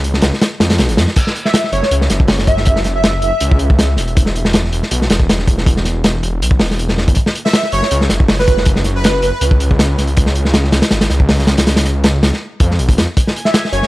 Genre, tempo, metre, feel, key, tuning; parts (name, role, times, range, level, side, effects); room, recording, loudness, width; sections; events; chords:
drum and bass, jungle; 160 BPM; 4/4; swing 54% on 16ths; A4 = 438 Hz
detuned saw bass; bass; 0.0-13.8 s; E1 to E#2; -16 LUFS; equal
crunchy breakbeat drum kit; drums; 0.0-13.9 s; crash cymbal, hi-hat, kick drum, snare drum; -13 LUFS; equal
airy dreamy lead; melody; 1.5-3.5, 7.4-9.4, 13.4-13.9 s; B4 to E5; -19 LUFS; right 1 dB; chorus, dub echo
drifting glass-harmonics texture; texture; 13.3-13.9 s; G#5 to G#6; -24 LUFS; equal; chorus, built-in reverb
little or no reverb; dry, gritty hardware recording, cassette tape; -11 LUFS; side -18 dB against mid
0.0-1.2 A section; 1.2-13.9 A section
drop 0.0-1.2, 1.2-13.9
0.0 C#7; 1.2 F#5; 4.2 E5; 7.2 F#5; 10.2 C#; 13.2 F#sus2